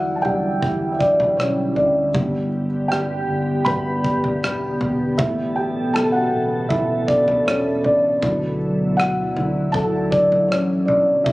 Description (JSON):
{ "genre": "pop ballad", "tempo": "79 BPM", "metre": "4/4", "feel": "straight", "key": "D major", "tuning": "A4 = 438 Hz", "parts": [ { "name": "felt-muted upright piano", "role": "accompaniment", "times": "0.0-11.3 s", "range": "F#3 to B5", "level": "-19 LUFS", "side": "equal", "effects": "none" }, { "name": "glassy FM pad", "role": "sustained chords", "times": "0.0-11.3 s", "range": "B2 to A4", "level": "-24 LUFS", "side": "equal", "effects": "ensemble chorus, built-in reverb" }, { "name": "fingered electric bass", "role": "bass", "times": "0.0-11.3 s", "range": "E1 to E2", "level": "-28 LUFS", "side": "equal", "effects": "none" }, { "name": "loose indie drum kit", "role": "drums", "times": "0.2-11.3 s", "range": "kick drum, rim click, toms", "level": "-25 LUFS", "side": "equal", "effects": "none" } ], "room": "light reverb, small room ambience", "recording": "recorded on a phone in the room, club ambience", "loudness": "-17 LUFS", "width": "side -19 dB against mid", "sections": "0.0-11.3 A section", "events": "felt piano solo 0.0-11.3", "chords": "0.0 Em7; 2.1 G; 5.2 Aadd9; 8.2 Dadd9" }